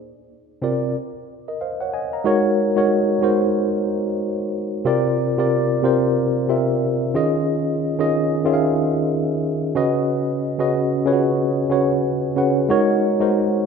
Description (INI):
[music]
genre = R&B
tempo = 92 BPM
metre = 4/4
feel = swing 59% on 16ths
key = unclear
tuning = A4 = 439 Hz
[part]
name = tine electric piano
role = solo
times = 0.6-13.7 s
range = C3 to Bb5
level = -18 LUFS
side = equal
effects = overdrive, fast stereo tremolo, slapback echo
[sound]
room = moderate lush hall reverb, RT60 2.2 s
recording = rough home demo mix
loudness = -18 LUFS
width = side -6 dB against mid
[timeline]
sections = 0.0-2.2 A section; 2.2-13.7 B section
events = none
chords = 0.0 C9sus4; 0.9 N.C.; 2.2 Ab9sus4; 4.9 C9sus4; 7.1 Eb9sus4; 9.7 Db9sus4; 12.7 Ab9sus4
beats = 0.29 0.94 1.59 | 2.25 2.90 3.55 4.20 | 4.85 5.51 6.16 6.81 | 7.46 8.11 8.77 9.42 | 10.07 10.72 11.38 12.03 | 12.68 13.33